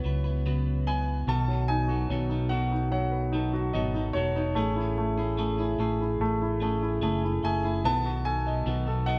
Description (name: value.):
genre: pop ballad.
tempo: 73 BPM.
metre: 4/4.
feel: straight.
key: unclear.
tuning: A4 = 444 Hz.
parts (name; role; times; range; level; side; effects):
bright concert grand piano; melody; 0.0-9.2 s; C#5 to A5; -34 LUFS; equal; none.
clear grand piano; accompaniment; 0.0-9.2 s; B2 to D#5; -33 LUFS; equal; none.
mellow French horn section; sustained chords; 0.0-9.2 s; C#3 to G#4; -39 LUFS; equal; none.
clean electric guitar; arpeggios; 0.0-9.2 s; B2 to B4; -38 LUFS; equal; none.
fingered electric bass; bass; 0.0-9.2 s; E1 to C#2; -31 LUFS; equal; none.
room: wet stone room reverb, RT60 1.3 s.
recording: band playing live in one room.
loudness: -28 LUFS.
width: mono.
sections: 0.0-1.3 A section; 1.3-9.2 B section.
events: none.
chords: 0.0 Esus2/C#; 1.3 B7; 4.6 Amaj7; 7.8 B7.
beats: 0.45 | 1.27 2.10 2.92 3.74 | 4.56 5.38 6.20 7.03 | 7.85 8.67.